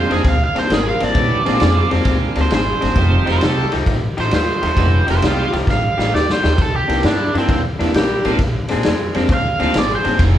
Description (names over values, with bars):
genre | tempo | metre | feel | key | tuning
electric blues shuffle | 132 BPM | 4/4 | swing 68% on 8ths | unclear | A4 = 440 Hz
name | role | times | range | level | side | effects
biting overdriven guitar | melody | 0.0-10.2 s | C4 to F5 | -20 LUFS | right 3 dB | none
bright tonewheel organ | accompaniment | 0.0-10.4 s | Gb3 to Gb4 | -23 LUFS | right 4 dB | slow rotary speaker, overdrive
bright saxophone section | stabs | 0.0-10.2 s | A3 to Bb4 | -26 LUFS | left 3 dB | none
electric guitar through a small old amp | riff | 0.1-10.2 s | Bb2 to G4 | -23 LUFS | left 3 dB | none
upright bass | bass | 0.1-10.4 s | F1 to G2 | -20 LUFS | equal | none
raw garage drum kit | drums | 0.1-10.3 s | crash cymbal, kick drum, ride cymbal, snare drum | -19 LUFS | equal | none
room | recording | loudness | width
moderate large studio reverb, RT60 1.4 s | band playing live in one room | -14 LUFS | side -11 dB against mid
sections
0.0-10.4 A section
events
drum fill 5.7-6.6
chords
0.0 Bb9; 3.0 F9; 6.6 C9; 8.4 Bb9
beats
0.24 0.70 | 1.15 1.60 2.06 2.51 | 2.96 3.42 3.87 4.32 | 4.78 5.23 5.68 6.13 | 6.59 7.04 7.49 7.94 | 8.40 8.85 9.30 9.75 | 10.20